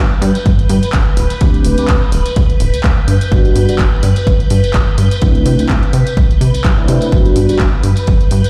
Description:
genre	filtered disco house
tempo	126 BPM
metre	4/4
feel	swing 56% on 16ths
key	G major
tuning	A4 = 440 Hz
part	mellow tine electric piano	accompaniment	0.0-7.7 s	G3 to G4	-20 LUFS	equal	phaser, sidechain pumping, low-pass filter
part	phased string machine	sustained chords	0.0-8.5 s	B4 to G6	-25 LUFS	equal	ensemble chorus, phaser, sidechain pumping, low-pass filter
part	plucky analog bass	bass	0.0-8.5 s	D1 to C3	-16 LUFS	equal	sidechain pumping, low-pass filter
part	tambourine	percussion	0.1-8.5 s	none	-35 LUFS	equal	sidechain pumping on perc, low-pass filter on perc
part	punchy analog drum machine	drums	0.2-8.5 s	handclaps, hi-hat	-26 LUFS	equal	sidechain pumping on hats, sidechain pumping on cymbals
part	electronic kick drum	drums	0.5-8.2 s	none	-16 LUFS	equal	none
room	little or no reverb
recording	played on a big sound system in a bare room, stone room reverb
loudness	-12 LUFS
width	mono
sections	0.0-8.5 A section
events	none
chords	0.0 G; 1.2 D7sus4; 3.1 Gmaj7; 5.2 C69; 7.1 Gmaj7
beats	0.46 0.93 | 1.41 1.89 2.36 2.84 | 3.31 3.79 4.27 4.74 | 5.22 5.70 6.17 6.65 | 7.12 7.60 8.08

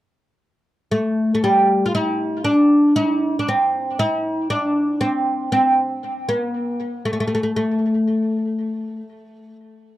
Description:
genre	arabic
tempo	118 BPM (eighths)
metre	10/8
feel	straight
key	unclear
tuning	A4 = 439 Hz
part	oud	melody	0.9-9.6 s	G3 to F4	-17 LUFS	equal	tape echo
room	moderate booth ambience, RT60 0.2 s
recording	dry, close 1970s-style studio recording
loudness	-17 LUFS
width	side -14 dB against mid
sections	0.0-2.4 A section; 2.4-10.0 B section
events	none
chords	none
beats	0.41 0.92 1.43 1.94 | 2.45 2.96 3.47 3.98 4.49 5.00 5.51 6.02 6.53 7.04 | 7.55 8.06 8.57 9.08

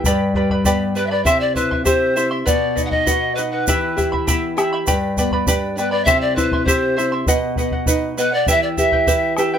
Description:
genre	andean folk, Andean ensemble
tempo	100 BPM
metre	2/4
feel	straight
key	E minor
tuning	A4 = 440 Hz
part	charango	accompaniment	0.0-9.6 s	E4 to C6	-21 LUFS	right 2 dB	none
part	nylon-string guitar	accompaniment	0.0-9.6 s	G2 to B4	-22 LUFS	left 2 dB	none
part	bombo	percussion	0.0-9.5 s	none	-22 LUFS	left 1 dB	none
part	tube shaker	percussion	0.1-9.5 s	none	-26 LUFS	right 6 dB	none
part	breathy pan flute	melody	1.0-9.3 s	B4 to F#5	-19 LUFS	left 1 dB	plate reverb
room	light reverb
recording	none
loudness	-16 LUFS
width	side -8 dB against mid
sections	0.1-9.6 A section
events	none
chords	0.1 G; 1.3 C; 2.5 B; 3.7 Em; 4.9 G; 6.1 C; 7.3 B; 8.5 Em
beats	| 0.05 0.66 | 1.26 1.86 | 2.46 3.07 | 3.67 4.27 | 4.87 5.47 | 6.07 6.67 | 7.27 7.87 | 8.47 9.07

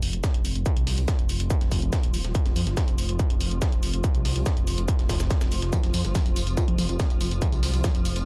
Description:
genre	driving peak-time techno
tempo	142 BPM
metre	4/4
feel	straight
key	unclear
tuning	A4 = 440 Hz
part	detuned saw bass	bass	0.0-8.2 s	Eb1 to F2	-30 LUFS	equal	sidechain pumping
part	swarming drone	drone	0.1-8.3 s	F3 to F4	-38 LUFS	equal	built-in reverb, sidechain pumping
part	breakbeat sampler-style drum kit	drums	0.0-8.3 s	hi-hat, shaker, snare drum	-40 LUFS	equal	high-pass filter on snare, high-pass filter on perc, high-pass filter on hats, high-pass filter on room
part	electronic hi-hat and tambourine	drums	0.0-8.2 s	none	-37 LUFS	equal	none
part	electronic kick drum	drums	0.2-7.9 s	none	-26 LUFS	equal	distortion, overdrive
part	tight sequenced synth	riff	5.7-7.9 s	F3 to F4	-35 LUFS	equal	chorus, overdrive, vintage 12-bit sampler grit, sidechain pumping, tape echo
room	little or no reverb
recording	dry, gritty hardware recording, cassette tape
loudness	-25 LUFS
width	mono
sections	0.0-8.3 A section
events	none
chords	0.0 F5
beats	0.24 | 0.66 1.08 1.50 1.93 | 2.35 2.77 3.19 3.62 | 4.04 4.46 4.88 5.31 | 5.73 6.15 6.57 7.00 | 7.42 7.84

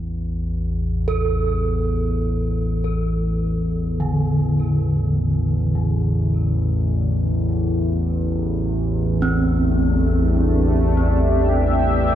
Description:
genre	dark ambient drone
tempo	free time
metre	none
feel	none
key	A minor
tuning	A4 = 440 Hz
part	analog drone	drone	0.0-12.2 s	A1 to E2	-19 LUFS	equal	chorus
part	gamelan-type bronze metallophone	arpeggios	1.1-12.2 s	D3 to A4	-25 LUFS	right 2 dB	ping-pong delay
part	sweeping resonant pad	sustained chords	8.6-12.2 s	A3 to E5	-22 LUFS	equal	chorus
room	wet cathedral reverb, RT60 6.2 s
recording	dark, warm production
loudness	-18 LUFS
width	side -11 dB against mid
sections	0.0-12.2 A section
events	none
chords	0.0 Am7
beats	free time

